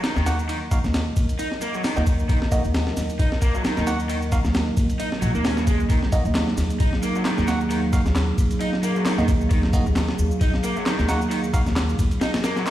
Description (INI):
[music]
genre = breakbeat, breaks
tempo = 133 BPM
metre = 4/4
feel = swing 56% on 16ths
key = Eb minor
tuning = A4 = 440 Hz
[part]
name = dark analog pad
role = sustained chords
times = 0.0-12.7 s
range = Gb3 to F5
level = -28 LUFS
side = right 1 dB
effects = chorus, sidechain pumping
[part]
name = raw garage guitar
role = riff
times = 0.0-12.7 s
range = Db3 to Eb4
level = -29 LUFS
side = equal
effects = overdrive, tape echo
[part]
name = breakbeat sampler-style drum kit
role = drums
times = 0.0-12.7 s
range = hi-hat, kick drum, ride cymbal, snare drum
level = -23 LUFS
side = equal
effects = studio reverb
[part]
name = electronic shaker and handclaps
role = drums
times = 0.0-12.7 s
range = none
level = -36 LUFS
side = left 1 dB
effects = studio reverb
[part]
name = upright bass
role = bass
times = 0.2-12.1 s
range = Bb1 to Eb2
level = -23 LUFS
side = equal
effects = none
[part]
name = bell-like tine electric piano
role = stabs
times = 0.3-11.6 s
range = Bb3 to Gb5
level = -31 LUFS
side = right 3 dB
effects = phaser, tape echo
[sound]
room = light reverb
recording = played on a big sound system in a bare room, stone room reverb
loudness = -19 LUFS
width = side -13 dB against mid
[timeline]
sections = 0.0-12.7 A section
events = none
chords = 0.0 Ebm